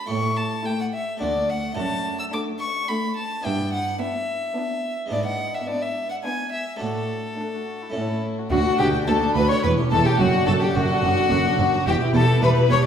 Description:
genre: classical, baroque-style concerto movement with solo episodes.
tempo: 107 BPM.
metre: 3/4.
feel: straight.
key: D major.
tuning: A4 = 441 Hz.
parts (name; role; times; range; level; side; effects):
rich violin; melody; 0.0-12.8 s; F#4 to E6; -26 LUFS; left 1 dB; none.
harpsichord; accompaniment; 0.0-12.9 s; D2 to B4; -30 LUFS; right 1 dB; none.
rich studio cello section; bass; 0.1-12.8 s; D2 to A2; -26 LUFS; right 2 dB; none.
warm chamber violin section; melody; 0.7-12.8 s; D4 to C#6; -27 LUFS; left 5 dB; none.
rich chamber violin section; second line; 0.7-12.8 s; C#4 to C#5; -28 LUFS; left 2 dB; none.
dark chamber viola section; accompaniment; 0.7-12.9 s; A3 to G4; -30 LUFS; left 1 dB; none.
rich chamber double bass section; bass; 8.5-12.8 s; E1 to D2; -23 LUFS; right 1 dB; none.
room: wet recital hall reverb, RT60 1.3 s.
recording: heard from further back in the room.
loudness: -20 LUFS.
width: side -8 dB against mid.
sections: 0.0-8.5 A section; 8.5-12.9 B section.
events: none.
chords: 0.1 A5; 1.2 D; 1.8 D/F#; 3.4 Em7/G; 5.1 E7/G#; 6.8 D/A; 7.9 A; 8.5 D; 9.6 A7/E; 10.2 D/F#; 11.9 Em.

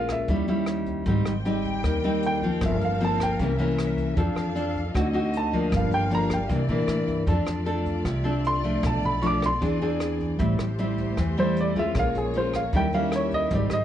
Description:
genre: bossa nova.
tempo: 154 BPM.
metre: 4/4.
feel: straight.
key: F major.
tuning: A4 = 440 Hz.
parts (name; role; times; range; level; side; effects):
warm baby grand piano; melody; 0.0-13.8 s; Ab4 to D6; -27 LUFS; right 1 dB; none.
nylon-string guitar; accompaniment; 0.0-13.8 s; G2 to A4; -26 LUFS; left 1 dB; none.
upright bass; bass; 0.0-13.8 s; G1 to Bb2; -28 LUFS; equal; none.
jazz brush drum kit; drums; 0.1-13.8 s; hi-hat, kick drum, rim click; -33 LUFS; equal; none.
warm studio string section; sustained chords; 1.1-13.8 s; G3 to G5; -35 LUFS; left 2 dB; none.
room: moderate studio reverb, RT60 0.6 s.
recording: worn, warbling old tape, cassette tape, warbly pitch drift.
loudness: -22 LUFS.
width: side -11 dB against mid.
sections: 0.0-7.3 A section; 7.3-13.8 A section.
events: grand piano solo 0.0-13.8.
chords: 0.3 Eb7b9; 1.1 Abmaj7; 2.6 Gm11; 3.4 C7b9; 4.2 F6; 4.9 D7b9; 5.7 Gm7; 6.5 C9; 7.3 F6; 8.8 Bm7b5; 9.6 Eaug7; 10.4 Am7; 11.9 Bbm7; 12.7 Eb7b9.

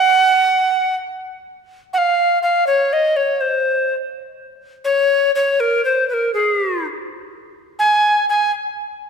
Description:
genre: mexican folk.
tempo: 82 BPM (dotted quarters).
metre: 6/8.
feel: straight.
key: Db major.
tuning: A4 = 439 Hz.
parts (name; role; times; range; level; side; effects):
breathy bright tenor recorder; solo; 0.0-8.5 s; Ab4 to Ab5; -15 LUFS; equal; none.
room: moderate concert hall reverb, RT60 2.3 s.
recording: minimal, uncompressed stereo recording.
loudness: -15 LUFS.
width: side -6 dB against mid.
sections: 0.0-1.2 A section; 1.2-9.1 B section.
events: none.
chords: none.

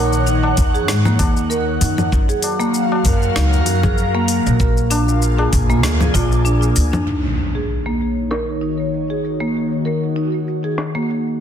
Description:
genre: organic downtempo.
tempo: 97 BPM.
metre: 4/4.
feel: swing 55% on 16ths.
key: Eb minor.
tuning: A4 = 441 Hz.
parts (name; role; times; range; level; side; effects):
airy breathy pad; sustained chords; 0.0-11.4 s; Eb3 to Gb5; -22 LUFS; left 1 dB; chorus, phaser, sidechain pumping.
marimba with soft mallets; arpeggios; 0.0-11.1 s; Bb3 to Bb4; -22 LUFS; right 1 dB; low-pass filter, ping-pong delay.
upright bass; bass; 0.0-6.9 s; Bb1 to Ab2; -17 LUFS; equal; sidechain pumping.
deep house drum kit; drums; 0.1-11.4 s; congas, hi-hat, shaker, snare drum; -23 LUFS; left 2 dB; low-pass filter on perc, low-pass filter on snare, low-pass filter on hats.
tabla; percussion; 0.1-7.0 s; none; -27 LUFS; left 3 dB; none.
electronic kick drum; drums; 0.6-6.3 s; none; -18 LUFS; equal; none.
impact; sound effects; 7.1-9.5 s; none; -25 LUFS; equal; none.
room: light reverb, digital ambience.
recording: dense, heavily limited modern master.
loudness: -15 LUFS.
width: side -9 dB against mid.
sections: 0.0-7.1 A section; 7.1-11.4 B section.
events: kick drops out 6.5-7.1; impact 7.1-9.5; filter sweep on analog synth pad 7.1-11.4.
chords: 0.0 Ebm7; 2.1 Gbmaj7; 4.6 Bb7; 7.1 Ebm7.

